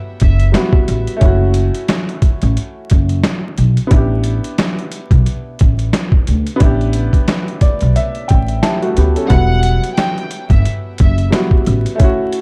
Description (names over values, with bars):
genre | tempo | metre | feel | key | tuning
hip hop, boom-bap hip-hop | 89 BPM | 4/4 | swing 57% on 16ths | E dorian | A4 = 439 Hz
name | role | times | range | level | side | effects
clear upright piano | accompaniment | 0.0-12.4 s | F#3 to A5 | -23 LUFS | equal | cassette tape, high-pass filter, low-pass filter
warm studio violin section | melody | 0.2-0.4, 9.3-11.2 s | E5 to G5 | -26 LUFS | equal | high-pass filter, low-pass filter, delay
upright bass | bass | 0.2-11.8 s | E1 to D2 | -17 LUFS | equal | none
boom bap sampler-style drum kit | drums | 0.2-12.4 s | hi-hat, kick drum, snare drum | -16 LUFS | equal | none
room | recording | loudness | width
small room ambience | dark, warm production, vinyl crackle | -14 LUFS | mono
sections
0.0-12.4 A section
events
none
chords
0.0 Emadd9; 1.2 F#m7; 3.9 A7sus4; 9.3 Emadd9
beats
0.54 | 1.22 1.89 2.56 3.24 | 3.91 4.59 5.26 5.93 | 6.61 7.28 7.96 8.63 | 9.31 9.98 10.65 11.33 | 12.00